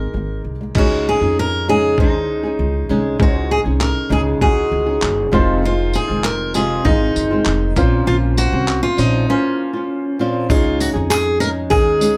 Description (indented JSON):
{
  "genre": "acoustic pop",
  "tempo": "98 BPM",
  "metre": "4/4",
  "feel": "straight",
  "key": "Db major",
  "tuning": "A4 = 442 Hz",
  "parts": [
    { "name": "picked steel-string acoustic guitar", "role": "melody", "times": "0.0-12.2 s", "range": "Db4 to Bb4", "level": "-22 LUFS", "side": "equal", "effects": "none" },
    { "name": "felt-muted upright piano", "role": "accompaniment", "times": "0.0-12.2 s", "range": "Ab3 to F5", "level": "-27 LUFS", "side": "equal", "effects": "none" },
    { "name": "flamenco guitar", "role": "accompaniment", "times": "0.0-12.2 s", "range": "F2 to Ab4", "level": "-23 LUFS", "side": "equal", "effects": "none" },
    { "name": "upright bass", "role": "bass", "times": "0.0-12.2 s", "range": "F1 to F2", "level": "-24 LUFS", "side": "equal", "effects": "none" },
    { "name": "dusty soul sampler-style drum kit", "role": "drums", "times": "0.7-12.2 s", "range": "crash cymbal, handclaps, kick drum, tambourine", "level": "-21 LUFS", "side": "equal", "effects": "none" },
    { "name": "tambourine", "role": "percussion", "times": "10.5-12.2 s", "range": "none", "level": "-34 LUFS", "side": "equal", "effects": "none" }
  ],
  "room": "moderate small room reverb, RT60 0.5 s",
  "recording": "heard from further back in the room",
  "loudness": "-17 LUFS",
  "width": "mono",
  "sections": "0.8-10.5 A section; 10.5-12.2 B section",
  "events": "break 9.3-10.5",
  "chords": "0.0 Absus2; 0.8 Dbsus2; 5.3 Fm7; 7.8 Bbmadd9; 10.5 Dbsus2"
}